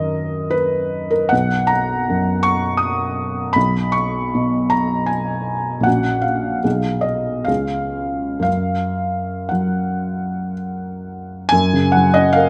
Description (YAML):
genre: classical, romantic nocturne for solo piano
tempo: 56-84 BPM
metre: 3/4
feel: rubato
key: F# major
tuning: A4 = 440 Hz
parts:
  - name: felt-muted upright piano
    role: solo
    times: 0.0-12.5 s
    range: A#1 to D#6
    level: -19 LUFS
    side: equal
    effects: none
room: moderate recital hall reverb, RT60 1.6 s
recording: close, detailed microphones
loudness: -19 LUFS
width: mono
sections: 0.0-11.5 A section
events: none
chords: 0.0 D#m/F#; 1.3 Bmaj7; 3.6 N.C.; 5.9 F#/A#; 6.6 G#m/B; 7.5 C#; 8.5 N.C.; 11.5 F#